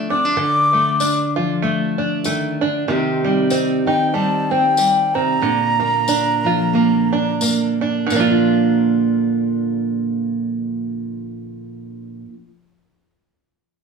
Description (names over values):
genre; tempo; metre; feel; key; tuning
acoustic folk duo or small band; 86-96 BPM; 4/4; swing 57% on 8ths; Bb major; A4 = 439 Hz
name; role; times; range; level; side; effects
fingerpicked steel-string acoustic guitar; accompaniment; 0.0-12.4 s; Bb2 to G4; -19 LUFS; right 1 dB; none
open-back banjo; arpeggios; 0.0-12.3 s; D3 to F4; -22 LUFS; right 6 dB; none
baroque flute; melody; 0.1-7.4 s; G5 to D6; -18 LUFS; left 1 dB; plate reverb
tambourine; percussion; 1.0-8.5 s; none; -26 LUFS; left 4 dB; none
room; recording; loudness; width
wet studio reverb, RT60 0.6 s; studio ambience; -16 LUFS; side -5 dB against mid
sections
0.0-8.1 A section; 8.1-10.9 B section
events
slowing down 2.9-8.1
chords
0.0 Dm; 2.9 Cm; 5.4 Bb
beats
| 0.37 1.00 1.62 2.25 | 2.88 3.50 4.14 4.77 | 5.42 6.07 6.74 7.41 | 8.11 8.80 9.50 10.20